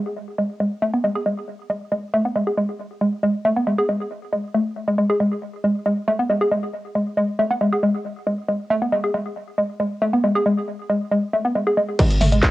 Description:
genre	driving peak-time techno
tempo	137 BPM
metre	4/4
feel	straight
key	G# phrygian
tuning	A4 = 438 Hz
part	woody wave-folded pluck	riff	0.0-12.4 s	G#3 to G#4	-20 LUFS	equal	chorus, overdrive, sidechain pumping, cassette tape, tape echo
part	electronic kick drum	drums	12.0-12.5 s	none	-17 LUFS	equal	distortion, cassette tape
part	techno drum kit	drums	12.0-12.5 s	crash cymbal, handclaps, hi-hat, toms	-21 LUFS	equal	cassette tape
part	warm sub bass	bass	12.2-12.4 s	G#1	-20 LUFS	equal	tube saturation, sidechain pumping, low-pass filter
room	wet studio reverb, RT60 0.6 s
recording	home recording on cassette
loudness	-19 LUFS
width	side -16 dB against mid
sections	0.0-12.0 A section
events	filter sweep on synth arpeggio sound 0.0-12.0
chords	none

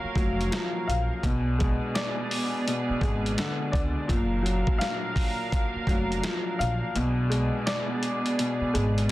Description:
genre	hip hop, boom-bap hip-hop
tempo	84 BPM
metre	4/4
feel	swing 63% on 16ths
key	unclear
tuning	A4 = 440 Hz
part	warm upright piano	accompaniment	0.0-9.1 s	A#2 to E#5	-29 LUFS	left 2 dB	cassette tape, high-pass filter, low-pass filter
part	warm studio string section	sustained chords	0.0-9.1 s	A#3 to E#5	-33 LUFS	right 3 dB	high-pass filter, low-pass filter
part	upright bass	bass	0.0-9.1 s	E#1 to C#2	-28 LUFS	equal	none
part	dusty soul sampler-style drum kit	drums	0.2-9.1 s	hi-hat, kick drum, snare drum	-29 LUFS	equal	none
room	small room ambience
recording	dense, heavily limited modern master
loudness	-24 LUFS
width	side -16 dB against mid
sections	0.0-9.1 A section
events	kick muted 6.9-9.1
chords	0.0 F#maj7; 1.2 Bm6; 4.1 F#maj7; 6.9 Bm6

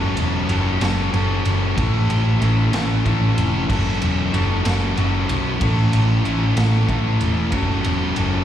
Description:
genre	quiet-loud alternative rock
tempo	62 BPM (dotted quarters)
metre	6/8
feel	straight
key	unclear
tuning	A4 = 444 Hz
part	sludgy distorted guitar	riff	0.0-8.4 s	F#3 to A4	-24 LUFS	right 8 dB	overdrive
part	thick fuzz guitar	riff	0.0-8.4 s	F#3 to A4	-23 LUFS	left 8 dB	distortion
part	hollow-body short-scale picked electric bass	bass	0.0-8.4 s	E1 to B1	-20 LUFS	equal	none
part	raw garage drum kit	drums	0.2-8.3 s	crash cymbal, kick drum, ride cymbal, snare drum	-26 LUFS	right 1 dB	none
room	little or no reverb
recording	live gig heard through the venue's PA, recital hall reverb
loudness	-17 LUFS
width	side -10 dB against mid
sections	0.0-8.4 A section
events	none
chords	0.0 F#m7; 1.8 A; 3.7 F#m7; 5.6 A; 7.5 F#m7

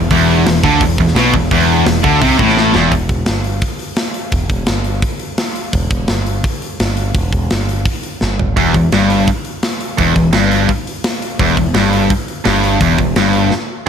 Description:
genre	heavy metal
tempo	170 BPM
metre	4/4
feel	straight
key	E minor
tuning	A4 = 440 Hz
part	distorted electric guitar	riff	0.0-2.9 s	E2 to D3	-19 LUFS	equal	overdrive
part	sludgy distorted guitar	riff	0.0-2.9, 8.6-13.5 s	E2 to D3	-15 LUFS	left 10 dB	overdrive
part	tight distorted guitar	riff	0.0-2.9, 8.6-13.9 s	E2 to D3	-16 LUFS	right 12 dB	distortion
part	growling picked electric bass	bass	0.0-13.5 s	E1 to D2	-18 LUFS	equal	overdrive
part	tight metal drum kit	drums	0.1-13.9 s	hi-hat, kick drum, snare drum, toms	-17 LUFS	equal	none
room	light reverb, small room ambience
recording	none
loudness	-12 LUFS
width	side -8 dB against mid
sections	0.0-2.9 A section; 2.9-13.9 B section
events	drum fill 2.6-2.9, 8.2-8.6, 13.5-13.9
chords	0.0 E5; 2.9 Em

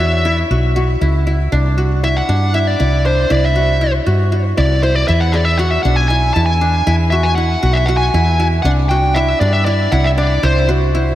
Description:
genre	progressive instrumental, band music in an uneven meter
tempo	236 BPM (eighths)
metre	7/8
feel	straight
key	unclear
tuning	A4 = 440 Hz
part	smooth overdriven lead guitar	melody	0.0-10.7 s	C5 to A5	-18 LUFS	equal	analog delay
part	qanun	arpeggios	0.0-11.2 s	D4 to G#4	-20 LUFS	equal	analog delay
part	woody fretless electric bass	bass	0.0-11.1 s	B1 to G2	-15 LUFS	equal	none
room	moderate lush hall reverb, RT60 2.8 s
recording	dreamy mix soaked in reverb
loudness	-12 LUFS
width	side -13 dB against mid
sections	0.0-11.2 A section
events	lead electric guitar solo 0.0-11.2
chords	0.0 Esus2; 1.5 Csus2; 5.1 Eadd9; 8.7 Csus2

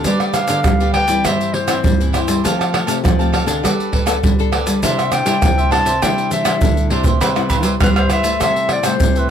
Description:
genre	samba and choro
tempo	101 BPM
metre	4/4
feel	straight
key	C major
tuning	A4 = 442 Hz
part	cavaquinho	accompaniment	0.0-9.3 s	D4 to A5	-23 LUFS	right 5 dB	none
part	nylon-string guitar	accompaniment	0.0-9.3 s	G2 to A4	-23 LUFS	left 8 dB	none
part	nylon-string guitar	bass	0.0-9.3 s	C3 to G3	-21 LUFS	equal	none
part	egg shaker, surdo, pandeiro, tamborim and agogo bells	percussion	0.0-9.3 s	none	-17 LUFS	right 1 dB	none
part	mellow clarinet	melody	0.1-9.3 s	B4 to A5	-19 LUFS	left 2 dB	none
room	light reverb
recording	close, detailed microphones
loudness	-14 LUFS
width	side -8 dB against mid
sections	0.0-7.2 A section; 7.2-9.3 B section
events	clarinet solo 0.0-7.2; drum fill 6.5-7.2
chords	0.1 G; 1.3 C/G; 2.4 Fadd9; 3.6 Gadd9; 4.8 Cadd9; 7.2 Cmaj7; 8.4 Am7/C

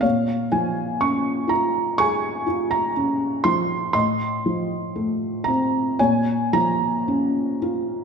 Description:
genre	classical, lyrical solo piano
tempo	54-62 BPM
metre	4/4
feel	rubato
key	Bb minor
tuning	A4 = 442 Hz
part	felt-muted upright piano	solo	0.0-8.0 s	A2 to Db6	-20 LUFS	equal	none
room	moderate scoring stage reverb, RT60 1.6 s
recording	recorded in a church or concert hall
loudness	-20 LUFS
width	side -6 dB against mid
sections	0.0-8.0 A section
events	none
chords	0.0 Bbm7; 3.9 F7/A; 6.0 Bbm

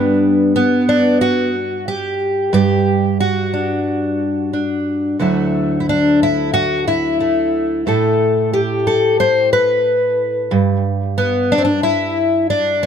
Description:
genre	folk, solo fingerstyle acoustic guitar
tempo	90 BPM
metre	4/4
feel	straight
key	unclear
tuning	A4 = 441 Hz
part	fingerpicked twelve-string acoustic guitar	solo	0.0-12.9 s	D2 to C5	-14 LUFS	equal	tape echo
room	light reverb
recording	close, detailed microphones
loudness	-14 LUFS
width	side -8 dB against mid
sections	0.0-12.9 A section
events	none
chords	0.0 Gmaj7; 5.2 Dadd9; 7.9 Asus2; 10.5 N.C.

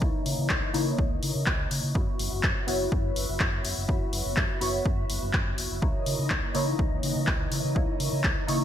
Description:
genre	filtered disco house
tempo	124 BPM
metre	4/4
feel	straight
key	C# dorian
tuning	A4 = 440 Hz
part	funky polysynth comp	accompaniment	0.0-8.6 s	A#3 to C#5	-32 LUFS	left 1 dB	chorus, phaser, sidechain pumping, low-pass filter
part	phased string machine	sustained chords	0.0-8.6 s	E3 to B5	-37 LUFS	equal	ensemble chorus, phaser, sidechain pumping, low-pass filter
part	fingered electric bass	bass	0.0-8.6 s	F#1 to C#3	-31 LUFS	equal	sidechain pumping, low-pass filter
part	electronic kick drum	drums	0.0-8.3 s	none	-28 LUFS	equal	none
part	punchy analog drum machine	drums	0.3-8.6 s	handclaps, hi-hat	-30 LUFS	left 1 dB	sidechain pumping on cymbals, sidechain pumping on hats, gated reverb
room	little or no reverb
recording	bright 1980s-style digital production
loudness	-24 LUFS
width	side -10 dB against mid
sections	0.0-8.6 A section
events	filter sweep 0.0-8.6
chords	0.0 C#m69; 2.0 F#7sus4; 5.8 C#m69

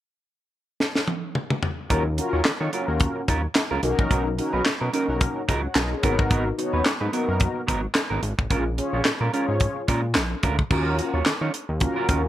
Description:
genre	early-eighties boogie funk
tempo	109 BPM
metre	4/4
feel	swing 56% on 16ths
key	Eb minor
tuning	A4 = 441 Hz
part	tight funk drum kit	drums	0.8-12.2 s	crash cymbal, handclaps, hi-hat, kick drum, snare drum, toms	-24 LUFS	equal	gated reverb
part	mellow synth brass	accompaniment	1.9-12.3 s	Cb4 to F#5	-26 LUFS	left 2 dB	chorus
part	clean electric guitar	riff	1.9-12.3 s	Gb3 to Db5	-29 LUFS	right 4 dB	wide subtle chorus
part	chorused synth bass	bass	1.9-12.3 s	Ab1 to Eb3	-26 LUFS	equal	none
room	light reverb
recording	none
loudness	-21 LUFS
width	side -13 dB against mid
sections	0.0-1.9 A section; 1.9-10.7 B section; 10.7-12.3 C section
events	drum fill 0.8-1.9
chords	0.0 N.C.; 1.9 Ebm9; 3.8 Bmaj9; 6.0 Abm9; 8.5 Bbm7; 10.7 Ebm9

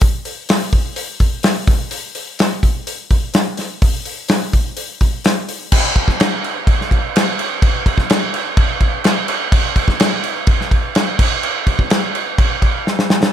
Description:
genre	rock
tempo	126 BPM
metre	4/4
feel	straight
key	none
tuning	none
part	natural country drum kit	drums	0.0-13.3 s	crash cymbal, hi-hat, kick drum, snare drum	-14 LUFS	equal	none
room	little or no reverb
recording	none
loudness	-14 LUFS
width	side -10 dB against mid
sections	0.0-5.7 A section; 5.7-13.3 B section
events	drum fill 12.9-13.3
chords	none

